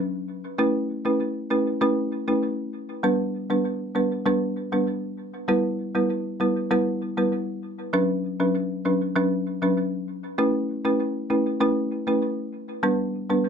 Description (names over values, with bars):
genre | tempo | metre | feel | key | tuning
afrobeats | 98 BPM | 4/4 | straight | B minor | A4 = 439 Hz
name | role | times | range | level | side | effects
folk marimba with medium hard mallets | solo | 0.6-13.5 s | F#3 to B4 | -22 LUFS | equal | tape echo
room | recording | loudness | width
moderate small room reverb, RT60 0.5 s | none | -22 LUFS | side -7 dB against mid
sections
0.0-7.9 A section; 7.9-13.5 B section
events
none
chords
0.0 N.C.; 0.6 Aadd9; 3.0 G; 5.5 Em; 7.9 Bmadd9; 10.4 Aadd9; 12.8 G